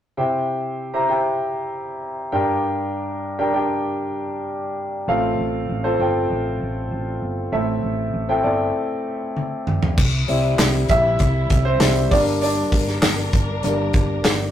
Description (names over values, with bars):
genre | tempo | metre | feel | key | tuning
piano-driven pop | 98 BPM | 4/4 | straight | C mixolydian | A4 = 440 Hz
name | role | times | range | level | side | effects
clear concert grand piano | accompaniment | 0.2-14.5 s | G2 to Bb5 | -21 LUFS | equal | none
hollow-body short-scale fingered electric bass | bass | 5.1-14.5 s | G1 to C2 | -24 LUFS | equal | none
natural country drum kit | drums | 9.4-14.4 s | crash cymbal, handclaps, hi-hat, kick drum, snare drum, toms | -20 LUFS | equal | none
warm studio string section | sustained chords | 10.0-14.5 s | C3 to Bb4 | -30 LUFS | left 1 dB | none
room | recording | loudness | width
moderate studio reverb, RT60 0.6 s | rough rehearsal-room recording, tube saturation | -18 LUFS | side -10 dB against mid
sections
0.2-10.0 A section; 10.0-14.5 B section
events
break 8.8-10.0; drum fill 9.4-10.0; grand piano solo 10.0-14.5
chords
0.2 C; 2.3 Gm; 5.1 F; 7.5 Am; 10.0 C; 12.1 Gm